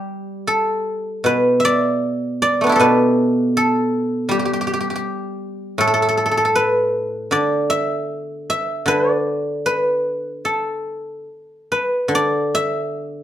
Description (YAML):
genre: chinese traditional, Chinese solo plucked strings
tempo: 72-83 BPM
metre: 4/4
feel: rubato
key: G gong mode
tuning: A4 = 438 Hz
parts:
  - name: guzheng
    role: solo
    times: 0.0-13.2 s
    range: A2 to E5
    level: -17 LUFS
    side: equal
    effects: none
room: moderate large studio reverb, RT60 0.9 s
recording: band playing live in one room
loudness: -17 LUFS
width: side -11 dB against mid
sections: 0.0-13.2 A section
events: none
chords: none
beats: 0.48 1.27 2.05 | 2.82 3.58 4.31 5.05 | 5.80 6.56 7.33 8.11 | 8.88 9.66 10.46 11.28 | 12.11 12.94